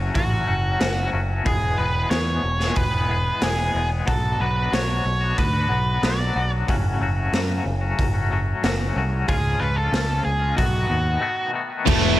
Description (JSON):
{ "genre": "quiet-loud alternative rock", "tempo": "92 BPM", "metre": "4/4", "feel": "straight", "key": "F# minor", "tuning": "A4 = 440 Hz", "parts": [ { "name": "twangy electric guitar", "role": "arpeggios", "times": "0.0-11.9 s", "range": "E2 to G#4", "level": "-27 LUFS", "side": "left 4 dB", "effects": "tremolo, digital delay" }, { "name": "growling picked electric bass", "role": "bass", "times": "0.0-12.2 s", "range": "E1 to F#2", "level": "-24 LUFS", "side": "equal", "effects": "overdrive" }, { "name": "octave-fuzz lead guitar", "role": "melody", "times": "0.1-12.2 s", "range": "A3 to D5", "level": "-25 LUFS", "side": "right 1 dB", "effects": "distortion" }, { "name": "raw garage drum kit", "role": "drums", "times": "0.1-12.0 s", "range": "crash cymbal, hi-hat, kick drum, snare drum", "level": "-25 LUFS", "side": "equal", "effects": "none" }, { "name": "thick fuzz guitar", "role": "riff", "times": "11.8-12.2 s", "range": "E2 to E3", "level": "-24 LUFS", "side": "right 2 dB", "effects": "distortion" }, { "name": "fuzz guitar", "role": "riff", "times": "11.9-12.2 s", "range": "E3 to E4", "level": "-23 LUFS", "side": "left 11 dB", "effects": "distortion" }, { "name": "heavy high-gain guitar", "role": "riff", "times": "11.9-12.2 s", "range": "E3 to E4", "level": "-22 LUFS", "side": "right 14 dB", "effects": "distortion" } ], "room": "light reverb, small room ambience", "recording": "none", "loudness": "-20 LUFS", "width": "side -14 dB against mid", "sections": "0.0-11.9 A section", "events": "break 11.2-11.9", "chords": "0.0 F#m; 1.5 E; 4.1 Bm; 6.7 F#m; 9.3 C#; 10.6 B7" }